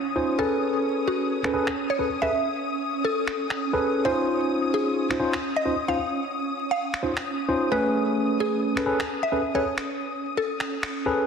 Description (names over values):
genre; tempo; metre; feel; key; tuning
UK garage, two-step garage; 131 BPM; 4/4; swing 61% on 16ths; unclear; A4 = 440 Hz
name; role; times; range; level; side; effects
mallet-like synth pluck; melody; 0.0-11.3 s; Gb4 to F5; -29 LUFS; equal; chorus, phaser, tape echo
ethereal airy pad; sustained chords; 0.0-11.3 s; Db4 to Eb6; -30 LUFS; equal; ensemble chorus, built-in reverb
bright tine electric piano; stabs; 0.2-11.3 s; A3 to C5; -25 LUFS; equal; medium stereo tremolo, low-pass filter, tape echo
electronic finger snaps; drums; 1.4-10.9 s; none; -32 LUFS; equal; low-pass filter on hats, studio reverb, soft clipping on snare, low-pass filter on snare
room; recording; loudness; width
moderate plate reverb, RT60 1.7 s, digital ambience; dense, heavily limited modern master, vinyl crackle, lossy compression artefacts; -23 LUFS; side -6 dB against mid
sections
0.0-11.3 A section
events
none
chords
0.4 Amaj9; 4.1 Dbmaj9; 7.7 Amaj9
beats
| 0.39 0.85 1.30 1.76 | 2.22 2.68 3.14 3.59 | 4.05 4.51 4.97 5.43 | 5.88 6.34 6.80 7.26 | 7.72 8.17 8.63 9.09 | 9.55 10.01 10.46 10.92